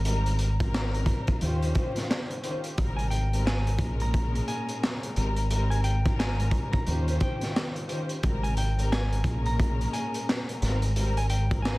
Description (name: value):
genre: hip hop, boom-bap hip-hop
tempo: 88 BPM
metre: 4/4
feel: swing 61% on 16ths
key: Ab major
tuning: A4 = 440 Hz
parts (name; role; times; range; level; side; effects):
- dark studio string section; accompaniment; 0.0-11.8 s; Ab2 to C5; -33 LUFS; left 1 dB; none
- deep dub fingered electric bass; bass; 0.0-11.8 s; Ab1 to Eb2; -26 LUFS; equal; none
- crunchy breakbeat drum kit; drums; 0.1-11.8 s; handclaps, hi-hat, kick drum, snare drum; -29 LUFS; equal; none
- clean electric guitar; melody; 3.0-11.8 s; G5 to Bb5; -37 LUFS; equal; ping-pong delay
room: little or no reverb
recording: dense, heavily limited modern master, vinyl crackle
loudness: -25 LUFS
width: side -20 dB against mid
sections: 0.0-11.8 A section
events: break 0.0-2.8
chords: 0.0 Abmaj9; 1.4 Eb13; 2.8 Abmaj9; 3.8 Bbm7; 5.2 Abmaj9; 6.9 Eb13; 8.2 Abmaj9; 9.3 Bbm7; 10.6 Abmaj9